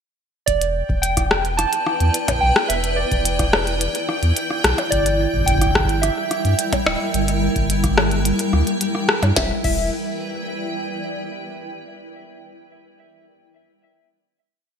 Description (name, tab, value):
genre	IDM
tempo	108 BPM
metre	4/4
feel	straight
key	E minor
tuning	A4 = 440 Hz
part	warbly lo-fi synth keys	melody	0.5-9.9 s	D5 to A5	-24 LUFS	right 1 dB	chorus, ping-pong delay
part	granular cloud pad	sustained chords	1.5-11.5 s	G3 to G5	-24 LUFS	equal	built-in reverb, wide subtle chorus
part	warm sub bass	bass	0.5-9.9 s	D1 to G2	-21 LUFS	equal	tube saturation
part	electronic kick drum	drums	0.5-9.8 s	none	-24 LUFS	equal	none
part	glitchy drum kit	drums	0.5-9.8 s	crash cymbal, hi-hat, percussion blips, rim click, snare drum	-22 LUFS	left 1 dB	overdrive, gated reverb
part	bubbling stepped-filter texture	texture	0.8-9.4 s	G5	-30 LUFS	right 1 dB	chorus, built-in reverb
room	moderate lush hall reverb, RT60 2.4 s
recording	bright 1980s-style digital production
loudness	-17 LUFS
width	side -7 dB against mid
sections	0.5-9.4 chorus; 9.4-11.6 final chord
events	none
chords	0.5 Em7; 4.9 Gm6; 9.4 Em7